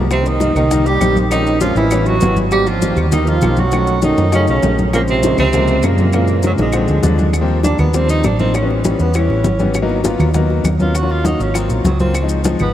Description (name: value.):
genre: Afro-Cuban jazz.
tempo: 199 BPM.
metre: 4/4.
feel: straight.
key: unclear.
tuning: A4 = 438 Hz.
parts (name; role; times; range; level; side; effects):
hollow-body short-scale fingered electric bass; bass; 0.0-12.7 s; Ab1 to F#2; -17 LUFS; equal; none.
clear tenor saxophone; melody; 0.1-12.7 s; Eb3 to G4; -19 LUFS; right 2 dB; diffuse ambient delay.
breathy trombone; second line; 0.1-7.2 s; Gb2 to G3; -21 LUFS; right 4 dB; diffuse ambient delay.
clear concert grand piano; accompaniment; 0.1-12.7 s; Db3 to Gb4; -19 LUFS; left 3 dB; none.
bongos; percussion; 0.1-12.7 s; none; -26 LUFS; left 4 dB; none.
claves; percussion; 0.1-12.7 s; none; -33 LUFS; equal; none.
congas; percussion; 0.1-12.7 s; none; -22 LUFS; equal; none.
maracas; percussion; 0.1-12.7 s; none; -32 LUFS; left 6 dB; none.
room: moderate huge ambient reverb, RT60 4.2 s.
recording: dreamy mix soaked in reverb.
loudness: -12 LUFS.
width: side -11 dB against mid.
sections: 0.0-7.3 A section; 7.3-12.7 B section.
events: tenor saxophone solo 7.3-12.7.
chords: 0.1 Cm7; 1.3 Bbm7; 1.9 A9; 2.5 Abmaj7; 3.7 B9; 4.9 Bbm9; 6.1 Gb9; 6.7 Bb9; 7.3 Eb69; 8.5 A9; 9.7 Abm9; 11.0 Ebm9; 11.6 Ab13; 12.2 Dbmaj7.